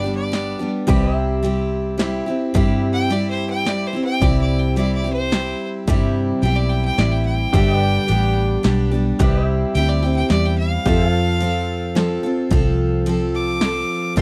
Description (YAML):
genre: honky-tonk and classic country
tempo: 108 BPM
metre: 3/4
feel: straight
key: C major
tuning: A4 = 440 Hz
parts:
  - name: bright fiddle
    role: melody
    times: 0.0-14.2 s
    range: C5 to D6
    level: -27 LUFS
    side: equal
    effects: none
  - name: picked steel-string acoustic guitar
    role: accompaniment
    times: 0.0-14.2 s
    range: G2 to A4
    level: -24 LUFS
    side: equal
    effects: none
  - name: pedal steel guitar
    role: sustained chords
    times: 0.0-14.2 s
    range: G4 to F5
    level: -30 LUFS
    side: equal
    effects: none
  - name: vintage muted fingered electric bass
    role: bass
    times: 0.0-14.2 s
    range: G1 to G2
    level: -23 LUFS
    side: equal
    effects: none
  - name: punchy analog drum machine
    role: drums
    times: 0.3-14.2 s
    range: kick drum, ride cymbal, snare drum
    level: -22 LUFS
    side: equal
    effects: none
room: little or no reverb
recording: dry, close 1970s-style studio recording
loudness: -19 LUFS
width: mono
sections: 0.0-14.2 A section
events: fiddle solo 0.0-14.2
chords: 0.0 G; 0.9 C; 7.5 G; 9.2 C; 10.9 F